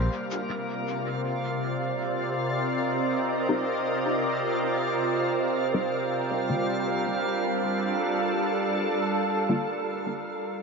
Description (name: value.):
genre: ambient.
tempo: 80 BPM.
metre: 4/4.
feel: swing 54% on 16ths.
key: C dorian.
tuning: A4 = 441 Hz.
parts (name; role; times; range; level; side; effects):
soft additive organ-like pad; sustained chords; 0.0-10.6 s; C3 to F5; -26 LUFS; right 1 dB; ensemble chorus, built-in reverb.
backwards swelling texture; texture; 0.0-10.6 s; Bb3 to F5; -32 LUFS; equal; built-in reverb.
filtered dub chord stab; stabs; 0.5-9.7 s; D3 to Bb4; -32 LUFS; left 2 dB; ensemble chorus, dub echo.
room: wet spring reverb, RT60 2.5 s.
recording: nothing above 7.5 kHz.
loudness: -25 LUFS.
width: side -4 dB against mid.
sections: 0.1-10.6 A section.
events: filter sweep on ambient pad 0.1-10.6; filter sweep on synth stab 0.1-10.6.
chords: 0.1 Cm7; 6.1 Gm7.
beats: | 0.12 0.87 1.62 2.37 | 3.12 3.87 4.62 5.37 | 6.12 6.87 7.62 8.37 | 9.12 9.87 10.62.